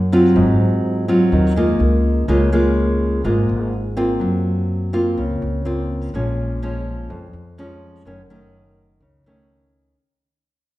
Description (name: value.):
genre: bossa nova.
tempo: 125 BPM.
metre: 4/4.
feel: straight.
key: Db major.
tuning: A4 = 440 Hz.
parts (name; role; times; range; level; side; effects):
nylon-string guitar; accompaniment; 0.0-10.0 s; F2 to F4; -18 LUFS; equal; none.
upright bass; bass; 0.0-9.9 s; Gb1 to Gb2; -21 LUFS; equal; none.
room: wet recital hall reverb, RT60 1.5 s.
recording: recorded in a church or concert hall.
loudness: -16 LUFS.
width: side -16 dB against mid.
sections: 0.0-2.3 A section; 2.3-10.0 B section.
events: fade-out 2.3-10.0.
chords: 0.4 Ab13; 1.8 Db6; 4.2 Gbmaj7#11; 6.1 Bbm7; 8.1 Gbm6.